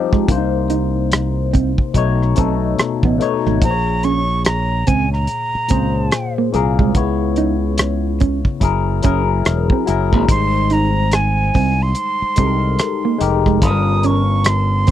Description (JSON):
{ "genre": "R&B, neo-soul", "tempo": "72 BPM", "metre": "4/4", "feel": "swing 62% on 16ths", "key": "unclear", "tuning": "A4 = 440 Hz", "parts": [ { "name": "barky tine electric piano", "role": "accompaniment", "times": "0.0-14.9 s", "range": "Bb2 to C#5", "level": "-20 LUFS", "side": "left 9 dB", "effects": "phaser" }, { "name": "electric guitar at the edge of break-up", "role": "second line", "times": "0.1-14.9 s", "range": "Ab3 to Eb4", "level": "-20 LUFS", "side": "right 9 dB", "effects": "none" }, { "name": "cloth-damped thuddy drum kit", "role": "drums", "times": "0.1-14.9 s", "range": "hi-hat, kick drum, rim click", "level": "-16 LUFS", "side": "equal", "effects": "none" }, { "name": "modern bright fingered electric bass", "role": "bass", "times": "0.3-14.9 s", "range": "Fb1 to Db2", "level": "-18 LUFS", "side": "right 1 dB", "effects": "none" }, { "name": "breathy bright concert flute", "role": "melody", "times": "3.6-14.9 s", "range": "Ab5 to Eb6", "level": "-20 LUFS", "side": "right 2 dB", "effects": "none" } ], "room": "little or no reverb", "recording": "dry, close 1970s-style studio recording", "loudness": "-14 LUFS", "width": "side -11 dB against mid", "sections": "0.0-14.9 A section", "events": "none", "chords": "0.3 Cm7; 2.0 B9; 3.6 Bbm7; 7.0 Dbm7; 8.6 Gb9; 10.3 Abmaj7; 13.6 Gm7b5" }